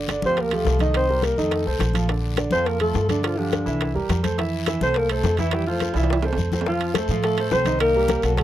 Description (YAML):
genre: Afro-Cuban jazz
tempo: 210 BPM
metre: 4/4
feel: straight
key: F major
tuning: A4 = 437 Hz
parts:
  - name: warm concert grand piano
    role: accompaniment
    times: 0.0-8.4 s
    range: D3 to F5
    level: -26 LUFS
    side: right 4 dB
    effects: none
  - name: upright bass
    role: bass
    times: 0.0-8.4 s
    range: G1 to A2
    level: -25 LUFS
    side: equal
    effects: none
  - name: bongos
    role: percussion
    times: 0.1-8.4 s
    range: none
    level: -29 LUFS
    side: left 8 dB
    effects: none
  - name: congas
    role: percussion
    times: 0.1-8.4 s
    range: none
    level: -30 LUFS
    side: left 4 dB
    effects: none
  - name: guiro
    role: percussion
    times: 0.1-8.4 s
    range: none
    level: -39 LUFS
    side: left 13 dB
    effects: none
  - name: timbales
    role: percussion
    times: 0.1-8.4 s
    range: none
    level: -30 LUFS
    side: right 9 dB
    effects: none
  - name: breathy trombone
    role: second line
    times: 0.2-8.4 s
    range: D3 to C4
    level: -30 LUFS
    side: left 6 dB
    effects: none
  - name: mellow alto saxophone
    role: melody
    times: 0.3-8.4 s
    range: D4 to C5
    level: -23 LUFS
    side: right 1 dB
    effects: none
room: little or no reverb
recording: dry, close 1970s-style studio recording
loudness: -19 LUFS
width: side -12 dB against mid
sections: 0.0-6.7 A section; 6.7-8.4 B section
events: drum fill 5.9-6.7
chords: 0.0 G9sus4; 0.9 Cm7; 1.5 F7; 2.1 Bbmaj7; 3.2 G5; 3.8 C6; 4.4 Fmaj7; 6.7 F; 7.8 Cm7